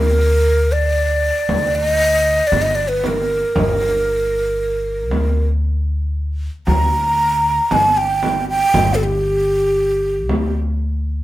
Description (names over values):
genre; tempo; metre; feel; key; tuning
Arabic maqam ensemble; 116 BPM (eighths); 10/8; straight; unclear; A4 = 442 Hz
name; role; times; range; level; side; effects
breathy mellow ney; melody; 0.0-10.5 s; G4 to Bb5; -16 LUFS; right 1 dB; none
upright bass; bass; 0.0-11.2 s; G1 to D2; -20 LUFS; left 1 dB; none
frame drum; percussion; 1.5-10.5 s; none; -24 LUFS; right 1 dB; none
room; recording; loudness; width
moderate stone room reverb, RT60 1.1 s; band playing live in one room; -15 LUFS; side -15 dB against mid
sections
0.0-11.2 A section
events
none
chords
none